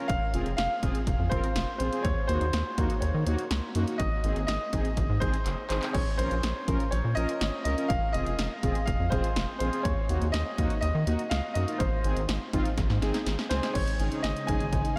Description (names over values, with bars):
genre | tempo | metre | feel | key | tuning
synth-pop | 123 BPM | 4/4 | straight | unclear | A4 = 440 Hz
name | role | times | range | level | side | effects
analog synth brass | accompaniment | 0.0-14.6 s | Bb3 to Bb4 | -36 LUFS | equal | chorus
clear baby grand piano | melody | 0.1-15.0 s | C5 to Ab5 | -35 LUFS | equal | lush chorus, tape echo
rubbery square bass | bass | 0.1-14.8 s | F1 to Eb3 | -32 LUFS | equal | none
punchy analog drum machine | drums | 0.1-15.0 s | crash cymbal, handclaps, hi-hat, kick drum, snare drum | -33 LUFS | equal | none
string machine, violas | sustained chords | 13.8-15.0 s | Db3 to Eb4 | -39 LUFS | equal | ensemble chorus
room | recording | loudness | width
moderate huge ambient reverb, RT60 7.5 s | dreamy mix soaked in reverb | -28 LUFS | mono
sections
0.0-13.8 A section; 13.8-15.0 B section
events
drum fill 5.5-5.9, 12.8-13.8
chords
0.1 Fm; 2.0 Ebm7; 4.0 Ab; 5.9 Bbm; 7.9 Fm; 9.8 Ebm7; 11.8 Ab; 13.8 Absus4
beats
| 0.09 0.58 1.07 1.56 | 2.05 2.53 3.02 3.51 | 4.00 4.49 4.97 5.46 | 5.95 6.44 6.92 7.41 | 7.90 8.39 8.88 9.36 | 9.85 10.34 10.83 11.31 | 11.80 12.29 12.78 13.27 | 13.75 14.24 14.73